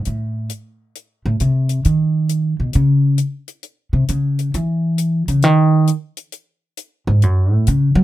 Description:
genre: jazz, small-group swing and bop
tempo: 134 BPM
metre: 4/4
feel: swing 66% on 8ths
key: unclear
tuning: A4 = 442 Hz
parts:
  - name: upright bass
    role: bass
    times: 0.0-8.0 s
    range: F#2 to F#3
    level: -14 LUFS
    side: equal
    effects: none
  - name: hi-hat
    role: drums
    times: 0.1-7.8 s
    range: none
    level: -30 LUFS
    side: left 7 dB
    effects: none
room: little or no reverb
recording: close, detailed microphones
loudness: -15 LUFS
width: side -14 dB against mid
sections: 0.0-8.0 A section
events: upright bass solo 0.0-8.0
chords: none

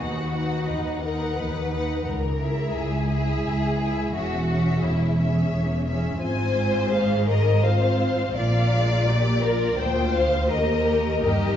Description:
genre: classical, slow romantic movement for string orchestra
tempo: 86 BPM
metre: 3/4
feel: uneven beats, rubato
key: unclear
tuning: A4 = 440 Hz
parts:
  - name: rich symphonic violin section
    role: melody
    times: 0.0-11.6 s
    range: D5 to Ab5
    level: -31 LUFS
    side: left 3 dB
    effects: none
  - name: rich symphonic violin section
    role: second line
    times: 0.0-11.6 s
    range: D#4 to D5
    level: -26 LUFS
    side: left 2 dB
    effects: none
  - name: warm symphonic viola section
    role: accompaniment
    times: 0.0-11.6 s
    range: Ab3 to B4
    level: -30 LUFS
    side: equal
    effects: none
  - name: rich studio cello section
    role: bass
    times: 0.0-11.6 s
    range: C#2 to Bb2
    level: -26 LUFS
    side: equal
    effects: none
  - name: rich symphonic double bass section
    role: bass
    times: 0.0-11.6 s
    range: E1 to D#2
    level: -27 LUFS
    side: equal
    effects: none
room: wet recital hall reverb, RT60 1.4 s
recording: heard from further back in the room, vinyl crackle, nothing above 7.8 kHz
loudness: -21 LUFS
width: side -10 dB against mid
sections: 0.0-11.6 A section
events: none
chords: 0.0 B/D#; 2.1 C#m; 4.2 C#m/E; 6.2 Fm/Ab; 8.4 Bb; 10.5 Eb

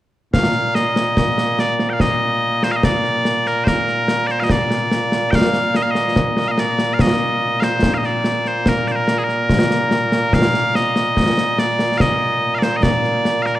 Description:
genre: scottish traditional, Scottish pipe music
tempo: 72 BPM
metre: 3/4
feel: straight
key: Bb major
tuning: A4 = 440 Hz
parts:
  - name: loud bright bagpipes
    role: melody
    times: 0.3-13.6 s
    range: Bb2 to G5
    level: -17 LUFS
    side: equal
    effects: none
  - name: concert snare drum and concert bass drum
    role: drums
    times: 0.3-13.6 s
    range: none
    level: -19 LUFS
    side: equal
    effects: none
room: moderate concert hall reverb, RT60 2.1 s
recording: worn, warbling old tape, cassette tape, warbly pitch drift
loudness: -15 LUFS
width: side -14 dB against mid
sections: 0.3-10.3 A section; 10.3-13.6 A section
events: none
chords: none

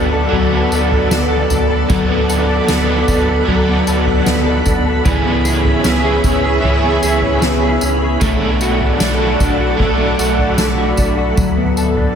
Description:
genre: dream pop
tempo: 76 BPM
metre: 4/4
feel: straight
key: unclear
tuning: A4 = 440 Hz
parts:
  - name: crunchy overdriven guitar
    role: accompaniment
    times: 0.0-11.9 s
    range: B2 to A4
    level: -20 LUFS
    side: right 3 dB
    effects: tremolo, ensemble chorus
  - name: soft string machine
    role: sustained chords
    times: 0.0-12.2 s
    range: G#4 to B5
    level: -19 LUFS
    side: right 1 dB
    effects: ensemble chorus
  - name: mellow electric guitar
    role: arpeggios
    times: 0.0-12.2 s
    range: E3 to A4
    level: -18 LUFS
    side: left 4 dB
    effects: ensemble chorus, digital delay
  - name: sub bass with octave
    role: bass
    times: 0.0-12.1 s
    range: B1 to D2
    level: -19 LUFS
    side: equal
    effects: none
  - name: soft-mallet drum kit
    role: drums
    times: 0.3-12.2 s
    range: kick drum, snare drum, tambourine, toms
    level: -20 LUFS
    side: right 1 dB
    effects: none
room: light reverb, small room ambience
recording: none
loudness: -12 LUFS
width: side -8 dB against mid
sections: 0.0-11.4 A section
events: none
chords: 0.0 D6; 5.1 C#m7; 8.2 Bm7; 11.4 D6

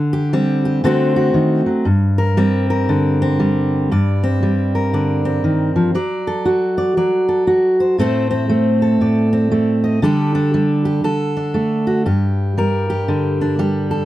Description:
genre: folk, solo fingerstyle acoustic guitar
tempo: 118 BPM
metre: 4/4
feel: swing 62% on 8ths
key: G minor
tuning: A4 = 441 Hz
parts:
  - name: fingerpicked steel-string acoustic guitar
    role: solo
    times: 0.0-14.1 s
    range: G2 to Eb5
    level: -14 LUFS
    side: equal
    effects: none
room: little or no reverb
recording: dry, close 1970s-style studio recording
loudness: -14 LUFS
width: side -14 dB against mid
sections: 0.0-3.9 A section; 3.9-12.1 B section; 12.1-14.1 C section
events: none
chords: 0.0 D7sus4; 0.8 D7; 1.9 Gm; 5.9 D/F#; 8.0 Am; 10.0 Dsus4; 11.0 D; 12.1 Gm

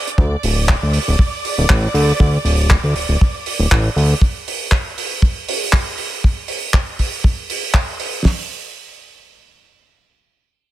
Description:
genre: nu-disco, nu disco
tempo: 119 BPM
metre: 4/4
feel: swing 55% on 16ths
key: unclear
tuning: A4 = 439 Hz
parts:
  - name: bright symphonic string section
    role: sustained chords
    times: 0.0-4.2 s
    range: D5 to D6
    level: -26 LUFS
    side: right 1 dB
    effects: sidechain pumping
  - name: damped 70s drum kit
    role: drums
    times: 0.1-8.1 s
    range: handclaps, hi-hat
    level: -21 LUFS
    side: right 2 dB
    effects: studio reverb
  - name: fat analog bass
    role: bass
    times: 0.2-4.1 s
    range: D1 to D2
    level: -15 LUFS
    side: equal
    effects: none
  - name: damped 70s drum kit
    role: drums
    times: 0.2-8.4 s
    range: hi-hat, kick drum, snare drum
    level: -14 LUFS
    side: equal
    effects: studio reverb
room: studio reverb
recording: echo-heavy mix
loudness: -15 LUFS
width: side -14 dB against mid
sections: 0.0-8.2 A section; 8.2-10.7 B section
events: none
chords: 0.2 D5; 8.2 N.C.

